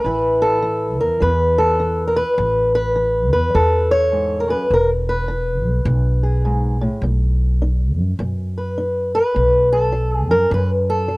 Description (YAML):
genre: acoustic country blues, solo or duo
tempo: 103 BPM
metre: 4/4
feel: swing 62% on 8ths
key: unclear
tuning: A4 = 439 Hz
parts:
  - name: fingerpicked old ladder-braced acoustic guitar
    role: melody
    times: 0.0-11.2 s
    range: E2 to C#5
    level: -17 LUFS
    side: equal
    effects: none
  - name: upright bass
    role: bass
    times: 0.0-11.2 s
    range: E1 to F#2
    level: -20 LUFS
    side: equal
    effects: none
room: studio reverb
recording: dry, close 1970s-style studio recording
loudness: -15 LUFS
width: side -25 dB against mid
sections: 0.0-11.2 A section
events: none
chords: 0.0 A5; 4.7 E; 7.0 B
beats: | 0.04 0.63 1.21 1.79 | 2.38 2.96 3.54 4.12 | 4.71 5.29 5.87 6.45 | 7.03 7.61 8.19 8.77 | 9.35 9.93 10.51 11.09